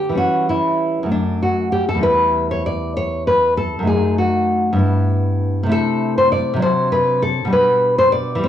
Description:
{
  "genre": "classical, baroque-style dance for nylon-string guitar",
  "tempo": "66 BPM (dotted quarters)",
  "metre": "6/8",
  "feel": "rubato",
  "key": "unclear",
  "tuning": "A4 = 440 Hz",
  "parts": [
    { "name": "nylon-string guitar", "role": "solo", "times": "0.0-8.5 s", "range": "E2 to D5", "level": "-15 LUFS", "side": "left 1 dB", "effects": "cassette tape" }
  ],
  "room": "light reverb",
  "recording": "home recording on cassette, studio ambience",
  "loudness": "-15 LUFS",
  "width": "side -10 dB against mid",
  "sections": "0.0-8.5 A section",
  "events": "none",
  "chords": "0.2 C#dim/E; 1.1 F#m; 2.0 Em; 3.9 D#dim/F#; 4.8 Em/G; 5.7 Am/C; 6.6 D7/C; 7.5 G/B",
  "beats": "| 0.18 1.11 | 2.04 2.97 | 3.88 4.80 | 5.71 6.63 | 7.53 8.44"
}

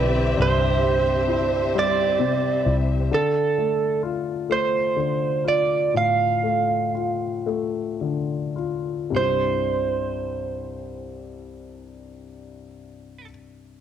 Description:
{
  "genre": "six-eight pop ballad",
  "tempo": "34-44 BPM (dotted quarters)",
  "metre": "6/8",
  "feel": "straight",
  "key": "C major",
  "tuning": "A4 = 440 Hz",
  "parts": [
    { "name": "direct-recorded clean electric guitar", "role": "melody", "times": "0.0-13.3 s", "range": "A4 to F5", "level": "-22 LUFS", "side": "right 6 dB", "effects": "cassette tape" },
    { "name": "warm grand piano", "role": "accompaniment", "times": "0.0-13.8 s", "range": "C2 to F4", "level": "-26 LUFS", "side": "left 7 dB", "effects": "cassette tape" },
    { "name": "warm studio string section", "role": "sustained chords", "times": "0.0-3.1 s", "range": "C4 to E5", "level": "-26 LUFS", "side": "left 1 dB", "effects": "cassette tape" },
    { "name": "vintage muted fingered electric bass", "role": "bass", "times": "0.0-3.1 s", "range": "B1 to C2", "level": "-24 LUFS", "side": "equal", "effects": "none" }
  ],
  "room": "moderate spring reverb, RT60 1.2 s, small room ambience",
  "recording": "home recording on cassette",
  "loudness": "-20 LUFS",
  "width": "side -9 dB against mid",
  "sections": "0.0-9.2 A section; 9.2-12.7 B section",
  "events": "slowing down 3.1-9.2",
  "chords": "0.0 Cadd9; 3.1 Dm; 9.2 Cadd9",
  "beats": "| 0.38 1.75 | 3.12 4.50 | 5.95 7.48 | 9.15 10.92"
}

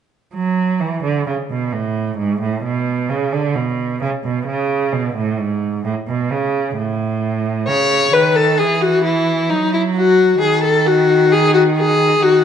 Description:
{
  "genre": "classical, baroque-style fugue for string quartet",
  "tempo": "66 BPM",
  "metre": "4/4",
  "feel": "straight",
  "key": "F# minor",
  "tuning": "A4 = 440 Hz",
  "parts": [
    { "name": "warm cello", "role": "bass", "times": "0.3-12.4 s", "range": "G#2 to F#3", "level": "-18 LUFS", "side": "right 4 dB", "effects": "none" },
    { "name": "rich viola", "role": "accompaniment", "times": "7.7-12.4 s", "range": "D#4 to C#5", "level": "-13 LUFS", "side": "left 3 dB", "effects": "none" }
  ],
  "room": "moderate recital hall reverb, RT60 1.7 s",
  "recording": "nothing above 10.9 kHz",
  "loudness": "-15 LUFS",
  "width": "side -8 dB against mid",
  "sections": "0.3-12.4 A section",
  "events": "none",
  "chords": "0.3 F#m; 2.2 G#dim; 4.0 C#5; 5.8 Aadd9; 7.7 C#m; 9.5 D#dim/F#; 11.3 G#5/D#",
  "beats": "| 0.34 1.27 2.19 3.10 | 4.02 4.93 5.85 6.77 | 7.68 8.59 9.50 10.41 | 11.32 12.22"
}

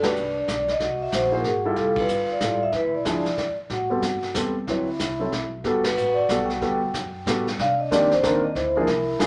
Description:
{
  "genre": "jazz, small-group swing and bop",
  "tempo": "186 BPM",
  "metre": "3/4",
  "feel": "swing 62% on 8ths",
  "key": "G major",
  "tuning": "A4 = 440 Hz",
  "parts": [
    { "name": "vibraphone with soft mallets", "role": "melody", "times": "0.0-3.5, 5.6-9.2 s", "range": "Ab4 to G5", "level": "-26 LUFS", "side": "equal", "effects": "none" },
    { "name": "trombone with cup mute", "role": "second line", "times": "0.0-9.3 s", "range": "D4 to F#4", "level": "-32 LUFS", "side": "equal", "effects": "none" },
    { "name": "warm grand piano", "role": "accompaniment", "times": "0.0-9.3 s", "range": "Eb3 to C5", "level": "-28 LUFS", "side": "equal", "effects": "none" },
    { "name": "upright bass", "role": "bass", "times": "0.0-9.3 s", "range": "F1 to C3", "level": "-39 LUFS", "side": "equal", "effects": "none" },
    { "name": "vintage brush drum kit", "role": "drums", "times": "0.0-9.3 s", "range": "brushed snare drum, hi-hat, kick drum, ride cymbal, snare drum", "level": "-32 LUFS", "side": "equal", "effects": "none" }
  ],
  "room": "moderate club reverb, RT60 0.7 s",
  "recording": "none",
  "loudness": "-24 LUFS",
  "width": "mono",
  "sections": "0.0-7.6 A section; 7.6-9.3 B section",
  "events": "band accent 0.0, 1.9, 5.8",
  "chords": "0.0 Gmaj9; 0.8 C7b13; 1.8 Fmaj9; 2.7 E7b9; 3.7 Am9; 4.7 D13; 5.6 Gmaj9; 7.6 Cm9; 8.5 Bb7#11",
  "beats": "0.15 0.48 | 0.80 1.12 1.45 | 1.77 2.09 2.41 | 2.74 3.06 3.38 | 3.71 4.03 4.35 | 4.67 5.00 5.32 | 5.64 5.97 6.29 | 6.61 6.93 7.25 | 7.58 7.90 8.22 | 8.54 8.86 9.19"
}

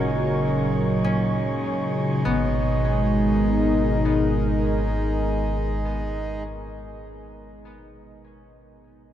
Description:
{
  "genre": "ambient",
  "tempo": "50 BPM",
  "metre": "4/4",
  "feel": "straight",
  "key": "G# minor",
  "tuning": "A4 = 440 Hz",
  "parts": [
    { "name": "warm analog pad", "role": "sustained chords", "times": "0.0-7.2 s", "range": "A#2 to A#4", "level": "-24 LUFS", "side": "left 1 dB", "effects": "chorus" },
    { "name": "concert harp", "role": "arpeggios", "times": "0.0-6.4 s", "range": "B3 to C#4", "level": "-34 LUFS", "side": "left 3 dB", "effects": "tape echo" },
    { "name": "deep rumbling drone", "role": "bass", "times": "0.0-5.8 s", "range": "G#1", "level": "-28 LUFS", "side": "equal", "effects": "built-in reverb" },
    { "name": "pedal harmonium", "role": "drone", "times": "0.0-6.4 s", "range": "G#3 to D#4", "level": "-30 LUFS", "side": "right 3 dB", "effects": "none" },
    { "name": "wind-like tuned noise texture", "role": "texture", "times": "0.0-2.3 s", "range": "C#5 to C#6", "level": "-35 LUFS", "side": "right 2 dB", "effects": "built-in reverb" }
  ],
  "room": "wet huge ambient reverb, RT60 8.0 s",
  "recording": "in a vast, echoing space",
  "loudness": "-20 LUFS",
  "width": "side -10 dB against mid",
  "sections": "0.0-2.2 A section; 2.2-7.0 B section",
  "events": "none",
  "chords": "0.0 F#/G#; 2.2 G#madd9",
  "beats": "1.04 | 2.24 3.44 4.64 5.84"
}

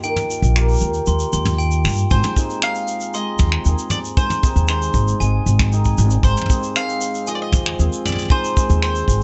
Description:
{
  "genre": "folktronica",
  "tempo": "116 BPM",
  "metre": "4/4",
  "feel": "straight",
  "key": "Ab major",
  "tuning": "A4 = 440 Hz",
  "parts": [
    { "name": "glockenspiel with hard plastic mallets", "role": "second line", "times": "0.0-8.6 s", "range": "G5 to C6", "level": "-32 LUFS", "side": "equal", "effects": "tape echo" },
    { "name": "hammered dulcimer", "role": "arpeggios", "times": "0.0-9.2 s", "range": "Ab2 to Ab4", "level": "-28 LUFS", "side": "equal", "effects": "digital delay" },
    { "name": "soft brush drum kit", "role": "drums", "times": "0.0-9.2 s", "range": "finger snaps, shaker, toms", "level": "-27 LUFS", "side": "equal", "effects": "none" },
    { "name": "upright bass", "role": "bass", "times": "0.4-9.2 s", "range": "Ab1 to G2", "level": "-19 LUFS", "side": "equal", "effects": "none" },
    { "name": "mandolin", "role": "melody", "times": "2.1-9.2 s", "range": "C5 to F5", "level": "-27 LUFS", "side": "equal", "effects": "digital delay" },
    { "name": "kick drum", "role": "drums", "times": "2.1-9.2 s", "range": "none", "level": "-20 LUFS", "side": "equal", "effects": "none" }
  ],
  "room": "small room ambience",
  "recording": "nothing above 8.0 kHz",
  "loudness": "-18 LUFS",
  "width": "mono",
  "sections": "0.0-2.1 A section; 2.1-9.2 B section",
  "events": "filter sweep on hammered dulcimer 0.0-2.1; break 0.0-2.1",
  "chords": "0.0 Ebadd9; 2.1 Ab; 6.2 Fm7/Ab",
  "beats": "| 0.04 0.55 1.07 1.59 | 2.10 2.62 3.14 3.66 | 4.17 4.69 5.21 5.72 | 6.24 6.76 7.28 7.79 | 8.31 8.83"
}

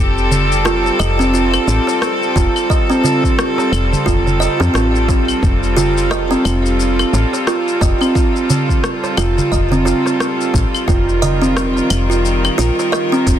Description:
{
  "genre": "organic downtempo",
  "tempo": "88 BPM",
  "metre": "4/4",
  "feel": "swing 58% on 16ths",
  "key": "F mixolydian",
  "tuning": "A4 = 440 Hz",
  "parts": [
    { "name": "bright chamber string section", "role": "sustained chords", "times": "0.0-13.4 s", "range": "Eb3 to Bb4", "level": "-19 LUFS", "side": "left 1 dB", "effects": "sidechain pumping" },
    { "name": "woody FM bass", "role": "bass", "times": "0.0-13.4 s", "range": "F1 to F2", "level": "-18 LUFS", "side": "equal", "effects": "none" },
    { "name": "organic electronic drum kit", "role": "drums", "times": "0.2-13.4 s", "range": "claves, hi-hat, rim click, shaker", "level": "-23 LUFS", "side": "left 3 dB", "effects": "studio reverb, soft clipping on snare" },
    { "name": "darbuka", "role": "percussion", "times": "0.3-13.4 s", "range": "none", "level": "-22 LUFS", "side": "right 2 dB", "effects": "none" },
    { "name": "kalimba", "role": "arpeggios", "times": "0.7-13.4 s", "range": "C4 to Eb5", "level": "-17 LUFS", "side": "right 2 dB", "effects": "digital delay" },
    { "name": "electronic kick drum", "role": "drums", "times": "2.4-13.4 s", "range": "none", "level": "-17 LUFS", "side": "equal", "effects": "studio reverb" }
  ],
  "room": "light reverb, small room ambience",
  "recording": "dense, heavily limited modern master",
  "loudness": "-12 LUFS",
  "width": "side -10 dB against mid",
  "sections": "0.0-13.4 A section",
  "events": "none",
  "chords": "0.0 Fadd9; 10.9 Ebadd9/F",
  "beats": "0.65 1.33 2.02 | 2.70 3.38 4.06 4.74 | 5.43 6.11 6.79 7.47 | 8.15 8.84 9.52 10.20 | 10.88 11.56 12.24 12.93"
}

